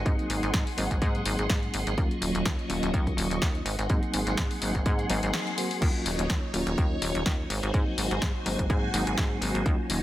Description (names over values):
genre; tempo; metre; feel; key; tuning
filtered disco house; 125 BPM; 4/4; swing 55% on 16ths; unclear; A4 = 440 Hz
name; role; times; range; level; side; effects
reed electric piano; accompaniment; 0.0-10.0 s; Gb3 to Gb4; -32 LUFS; equal; fast tremolo, phaser, sidechain pumping, low-pass filter
phased string machine; sustained chords; 0.0-10.0 s; Gb3 to Db6; -34 LUFS; equal; ensemble chorus, phaser, sidechain pumping, low-pass filter
plucky analog bass; bass; 0.0-10.0 s; Eb1 to Ab2; -31 LUFS; equal; sidechain pumping, low-pass filter
electronic kick drum; drums; 0.1-9.8 s; none; -27 LUFS; equal; none
house drum kit; drums; 0.1-10.0 s; crash cymbal, hi-hat, snare drum; -32 LUFS; left 1 dB; sidechain pumping on hats, sidechain pumping on cymbals
tambourine; percussion; 0.1-5.8 s; none; -47 LUFS; left 5 dB; none
room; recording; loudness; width
light reverb, digital ambience; none; -25 LUFS; side -14 dB against mid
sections
0.0-5.8 A section; 5.8-10.0 B section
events
break 5.3-5.8; band accent 5.3; drop 5.8-10.0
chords
0.0 Ab7; 2.0 Ebm7; 3.7 Ab7; 5.8 Ebm7; 7.5 Ab7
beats
| 0.06 0.54 1.02 1.50 | 1.98 2.46 2.94 3.42 | 3.90 4.38 4.86 5.34 | 5.82 6.30 6.78 7.26 | 7.74 8.22 8.70 9.18 | 9.66